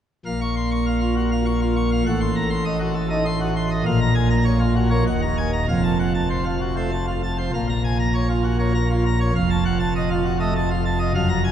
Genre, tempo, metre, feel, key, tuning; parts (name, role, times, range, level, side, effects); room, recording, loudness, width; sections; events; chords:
classical, organ toccata; 100 BPM; 3/4; straight; Bb minor; A4 = 440 Hz
pipe organ, plenum; solo; 0.3-11.5 s; Eb1 to Db6; -19 LUFS; equal
wet cathedral reverb, RT60 4.3 s; heard from further back in the room; -19 LUFS; side -9 dB against mid
0.3-11.5 A section
0.3 Bbm; 2.1 Adim7; 3.9 Bbm; 5.1 Ebm; 5.7 F; 7.5 Bbm; 9.3 F7